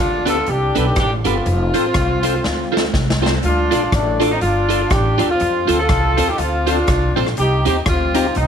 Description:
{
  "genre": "ska",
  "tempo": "122 BPM",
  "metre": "4/4",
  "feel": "swing 58% on 8ths",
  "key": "F mixolydian",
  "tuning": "A4 = 441 Hz",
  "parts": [
    { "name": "mellow horn section", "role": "melody", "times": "0.0-8.5 s", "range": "A3 to A4", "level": "-19 LUFS", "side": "equal", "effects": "none" },
    { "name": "upright bass", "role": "bass", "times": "0.0-8.5 s", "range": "F1 to F2", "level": "-21 LUFS", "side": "equal", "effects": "none" },
    { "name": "electric guitar at the edge of break-up", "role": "accompaniment", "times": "0.3-8.3 s", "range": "D4 to D5", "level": "-23 LUFS", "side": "right 12 dB", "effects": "lush chorus, slapback echo" },
    { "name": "percussive tonewheel organ", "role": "stabs", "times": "0.3-8.3 s", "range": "B3 to A4", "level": "-24 LUFS", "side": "left 10 dB", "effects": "chorus vibrato, slow rotary speaker, slapback echo" },
    { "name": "street-band drum kit", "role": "drums", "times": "0.3-8.5 s", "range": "hi-hat, kick drum, rim click, snare drum", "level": "-22 LUFS", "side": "equal", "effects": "none" }
  ],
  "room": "light reverb, small room ambience",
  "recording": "1960s-style stereo with parts hard left and right",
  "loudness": "-14 LUFS",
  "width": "side -7 dB against mid",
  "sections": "0.0-3.4 A section; 3.4-8.5 B section",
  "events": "drum fill 2.4-3.4",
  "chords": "0.0 Gadd9; 1.5 F; 3.4 Dm; 5.4 F; 7.4 Cm"
}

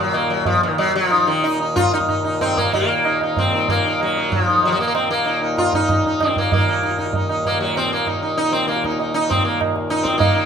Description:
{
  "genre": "indian classical, Hindustani",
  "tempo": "191 BPM",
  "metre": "3/4",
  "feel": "straight",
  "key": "Eb raga shivaranjani",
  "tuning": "A4 = 441 Hz",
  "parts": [
    { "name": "sitar", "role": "melody", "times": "0.0-10.5 s", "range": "Eb3 to F4", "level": "-18 LUFS", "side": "left 1 dB", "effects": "none" },
    { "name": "hand-pumped harmonium", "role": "drone", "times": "0.0-10.5 s", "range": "Eb2 to Bb2", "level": "-27 LUFS", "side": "left 1 dB", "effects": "none" },
    { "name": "tabla", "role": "percussion", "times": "0.1-10.3 s", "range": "none", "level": "-23 LUFS", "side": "right 3 dB", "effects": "none" }
  ],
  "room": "moderate scoring stage reverb, RT60 1.7 s",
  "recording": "minimal, uncompressed stereo recording",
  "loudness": "-16 LUFS",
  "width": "side -7 dB against mid",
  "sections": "0.0-2.7 A section; 2.7-10.2 B section",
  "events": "speeding up 0.0-10.5",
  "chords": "none"
}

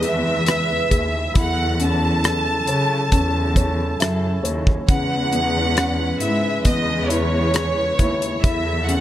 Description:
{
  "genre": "pop ballad",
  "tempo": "68 BPM",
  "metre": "4/4",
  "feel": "straight",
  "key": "unclear",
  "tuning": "A4 = 440 Hz",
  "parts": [
    { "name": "clear studio violin section", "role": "melody", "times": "0.0-9.0 s", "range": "C#5 to A5", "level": "-23 LUFS", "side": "equal", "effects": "none" },
    { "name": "felt-muted upright piano", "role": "accompaniment", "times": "0.0-9.0 s", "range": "C#3 to E5", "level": "-26 LUFS", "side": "left 2 dB", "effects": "none" },
    { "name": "mellow woodwind section", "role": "sustained chords", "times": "0.0-9.0 s", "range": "C#3 to B4", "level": "-28 LUFS", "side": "right 2 dB", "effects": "none" },
    { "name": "warm symphonic cello section", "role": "bass", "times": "0.0-9.0 s", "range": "D#2 to C#3", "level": "-23 LUFS", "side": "equal", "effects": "none" },
    { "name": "damped 70s drum kit", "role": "drums", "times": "0.0-9.0 s", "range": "hi-hat, kick drum, rim click", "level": "-18 LUFS", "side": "equal", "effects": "none" }
  ],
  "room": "small room ambience",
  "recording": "none",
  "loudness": "-17 LUFS",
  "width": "side -12 dB against mid",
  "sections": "0.0-9.0 A section",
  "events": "none",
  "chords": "0.0 C#m7/E; 1.4 F#m7/E; 4.9 C#m7/E; 8.4 F#m7/E"
}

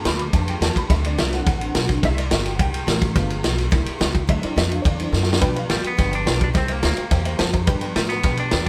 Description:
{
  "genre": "rockabilly",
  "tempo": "213 BPM",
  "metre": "4/4",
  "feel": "straight",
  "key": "G mixolydian",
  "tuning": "A4 = 440 Hz",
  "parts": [
    { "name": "honky-tonk upright piano", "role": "accompaniment", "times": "0.0-8.7 s", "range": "F#3 to D6", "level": "-31 LUFS", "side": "equal", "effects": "none" },
    { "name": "picked steel-string acoustic guitar", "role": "accompaniment", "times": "0.0-8.7 s", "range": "G2 to A4", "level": "-34 LUFS", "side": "equal", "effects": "none" },
    { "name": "upright bass", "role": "bass", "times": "0.0-8.7 s", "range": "G1 to B2", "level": "-26 LUFS", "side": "equal", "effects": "none" },
    { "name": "vintage drum kit", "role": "drums", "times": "0.1-8.7 s", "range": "kick drum, ride cymbal, snare drum", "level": "-23 LUFS", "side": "equal", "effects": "none" },
    { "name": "clean electric guitar", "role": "melody", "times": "5.7-8.7 s", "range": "G3 to D4", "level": "-28 LUFS", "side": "equal", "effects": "none" }
  ],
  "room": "moderate studio reverb, RT60 0.7 s",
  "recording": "band playing live in one room",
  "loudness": "-21 LUFS",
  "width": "mono",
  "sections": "0.0-5.4 A section; 5.4-8.7 B section",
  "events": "honky-tonk piano solo 0.0-5.4; drum fill 5.1",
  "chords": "0.0 G7; 0.9 D7; 2.0 C7; 3.2 G7; 3.7 C7; 4.3 D7; 5.4 G7; 6.5 C7; 7.7 G7"
}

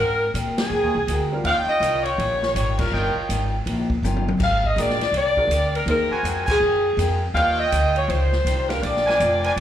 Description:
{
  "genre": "jazz, big band swing",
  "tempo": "163 BPM",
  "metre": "4/4",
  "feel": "swing 63% on 8ths",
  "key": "Eb major",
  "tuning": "A4 = 440 Hz",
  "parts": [
    { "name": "clear saxophone section", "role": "melody", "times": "0.0-9.6 s", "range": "Ab4 to F5", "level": "-21 LUFS", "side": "equal", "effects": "slapback echo" },
    { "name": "picked steel-string acoustic guitar", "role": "accompaniment", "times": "0.0-9.6 s", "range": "Bb2 to Bb4", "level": "-32 LUFS", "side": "left 3 dB", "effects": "slapback echo" },
    { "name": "upright bass", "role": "bass", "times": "0.0-9.6 s", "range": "F1 to Bb2", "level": "-24 LUFS", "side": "equal", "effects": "none" },
    { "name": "swinging big-band drum kit", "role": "drums", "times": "0.3-9.6 s", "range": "crash cymbal, hi-hat, kick drum, ride cymbal, snare drum, toms", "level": "-29 LUFS", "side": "equal", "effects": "none" },
    { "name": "clear upright piano", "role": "accompaniment", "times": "1.3-9.6 s", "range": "D3 to F5", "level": "-30 LUFS", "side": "equal", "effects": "slapback echo" },
    { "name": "clear trumpet section", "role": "stabs", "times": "1.5-3.5, 6.1-9.5 s", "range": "D4 to Ab5", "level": "-26 LUFS", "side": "right 2 dB", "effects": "slapback echo" }
  ],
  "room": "light reverb",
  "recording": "live gig heard through the venue's PA, club reverb",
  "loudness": "-19 LUFS",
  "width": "side -10 dB against mid",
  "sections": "0.0-9.6 A section",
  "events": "band accent 0.5, 2.7, 6.4; drum fill 4.0-4.4",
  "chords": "0.0 Ab9; 1.4 Eb9; 4.4 Ab9; 7.4 Eb9; 8.8 Bb9"
}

